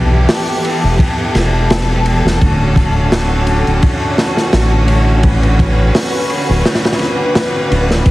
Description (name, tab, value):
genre	trip hop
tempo	85 BPM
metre	4/4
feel	swing 55% on 16ths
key	unclear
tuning	A4 = 440 Hz
part	clear studio string section	sustained chords	0.0-8.1 s	D3 to B4	-17 LUFS	equal	none
part	round analog bass	bass	0.0-8.1 s	D1 to B1	-13 LUFS	equal	none
part	crunchy breakbeat drum kit	drums	0.3-8.1 s	hi-hat, kick drum, ride cymbal, snare drum	-14 LUFS	equal	none
room	small room ambience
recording	heavily compressed radio sound, multiband compression, vinyl crackle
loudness	-11 LUFS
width	side -17 dB against mid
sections	0.0-8.1 A section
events	none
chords	0.0 Em; 2.4 Dmaj7